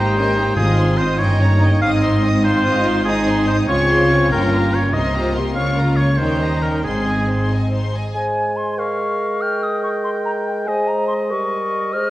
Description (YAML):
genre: quick classical-period movement for symphony orchestra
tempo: 96 BPM (dotted quarters)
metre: 6/8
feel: straight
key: Ab major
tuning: A4 = 441 Hz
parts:
  - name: bright studio violin section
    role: melody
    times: 0.0-8.2 s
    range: G5 to Eb6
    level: -30 LUFS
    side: left 2 dB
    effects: none
  - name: clear oboe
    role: second line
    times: 0.0-12.1 s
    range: Ab4 to Ab5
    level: -22 LUFS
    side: equal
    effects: none
  - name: rich studio violin section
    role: second line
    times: 0.0-8.2 s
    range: C4 to G5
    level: -27 LUFS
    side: left 2 dB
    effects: none
  - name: rich chamber viola section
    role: accompaniment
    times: 0.0-7.8 s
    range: C4 to Ab4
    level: -25 LUFS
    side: equal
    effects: none
  - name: dark French horn section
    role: sustained chords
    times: 0.0-7.9 s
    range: G3 to G4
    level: -22 LUFS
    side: left 1 dB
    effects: none
  - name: clear chamber cello section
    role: bass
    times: 0.0-8.0 s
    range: G2 to Eb3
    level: -21 LUFS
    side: equal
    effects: none
  - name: rich chamber double bass section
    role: bass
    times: 0.0-8.0 s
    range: G1 to Eb2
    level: -22 LUFS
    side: right 1 dB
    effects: none
  - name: timpani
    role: percussion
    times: 0.6-1.2, 6.9-7.5 s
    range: Ab2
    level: -25 LUFS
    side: equal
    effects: none
  - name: mellow clarinet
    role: second line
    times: 8.2-12.1 s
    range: Bb4 to C5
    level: -26 LUFS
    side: left 1 dB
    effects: none
  - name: mellow hollow silver concert flute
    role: second line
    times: 8.2-12.1 s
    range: G5 to F6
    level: -22 LUFS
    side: left 1 dB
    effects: none
  - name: dark bassoon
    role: accompaniment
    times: 8.2-12.1 s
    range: G3 to Ab3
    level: -23 LUFS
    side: right 1 dB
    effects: none
room: wet scoring stage reverb, RT60 1.8 s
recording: worn, warbling old tape, cassette tape, warbly pitch drift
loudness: -15 LUFS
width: side -16 dB against mid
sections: 0.0-8.2 A section; 8.2-12.1 A section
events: none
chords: 0.0 Eb/Ab; 0.6 Ab; 1.2 Eb7/G; 1.8 Ab; 3.7 Dbmaj7; 4.3 Gdim; 4.9 Cm7; 5.6 Bbm/Db; 6.2 Eb7; 6.8 Ab; 11.3 Eb7/G